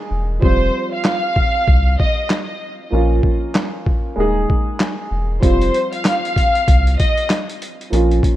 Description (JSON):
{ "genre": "hip hop, boom-bap hip-hop", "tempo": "96 BPM", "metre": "4/4", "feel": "swing 60% on 16ths", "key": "F minor", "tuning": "A4 = 439 Hz", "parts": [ { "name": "warm upright piano", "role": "accompaniment", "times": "0.0-8.4 s", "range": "F3 to Ab4", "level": "-22 LUFS", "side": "right 1 dB", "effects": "high-pass filter, low-pass filter" }, { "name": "warm sub bass", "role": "bass", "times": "0.1-8.2 s", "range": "Eb1 to C2", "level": "-16 LUFS", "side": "equal", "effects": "none" }, { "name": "warm studio violin section", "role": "melody", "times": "0.4-7.3 s", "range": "C5 to F5", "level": "-20 LUFS", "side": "equal", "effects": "high-pass filter, low-pass filter, digital delay" }, { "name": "boom bap sampler-style drum kit", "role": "drums", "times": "0.4-8.4 s", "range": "handclaps, hi-hat, kick drum, snare drum", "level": "-18 LUFS", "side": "equal", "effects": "none" } ], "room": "digital ambience", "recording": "rough home demo mix", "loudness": "-15 LUFS", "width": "side -14 dB against mid", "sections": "0.0-8.4 A section", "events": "break 0.0-5.4", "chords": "0.4 Fsus2; 2.9 Bbm; 4.2 Ebsus4; 5.4 Fsus2" }